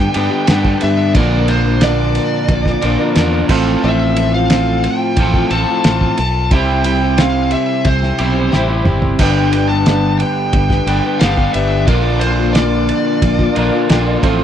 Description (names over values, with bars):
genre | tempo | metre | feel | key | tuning
folk rock and heartland rock | 90 BPM | 4/4 | straight | unclear | A4 = 444 Hz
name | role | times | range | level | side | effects
smooth overdriven lead guitar | melody | 0.0-14.2 s | C5 to A5 | -19 LUFS | equal | none
clear upright piano | accompaniment | 0.0-14.4 s | C4 to Bb5 | -26 LUFS | right 12 dB | none
picked steel-string acoustic guitar | accompaniment | 0.0-14.4 s | G2 to Bb4 | -23 LUFS | left 8 dB | none
electric guitar at the edge of break-up | riff | 0.0-14.4 s | G2 to Bb4 | -17 LUFS | equal | none
fingered electric bass | bass | 0.0-14.4 s | G1 to G2 | -17 LUFS | equal | none
cloth-damped thuddy drum kit | drums | 0.1-14.4 s | crash cymbal, kick drum, ride cymbal, snare drum, toms | -18 LUFS | equal | none
tonewheel organ | sustained chords | 9.2-14.4 s | A3 to B4 | -27 LUFS | equal | none
room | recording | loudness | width
little or no reverb | dry, close 1970s-style studio recording | -12 LUFS | side -9 dB against mid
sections
0.0-14.4 A section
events
drum fill 8.5-9.2; upright piano fill 13.2-14.4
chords
0.0 G; 1.2 Bb; 3.5 F/A; 6.5 C; 9.2 G; 11.9 Bb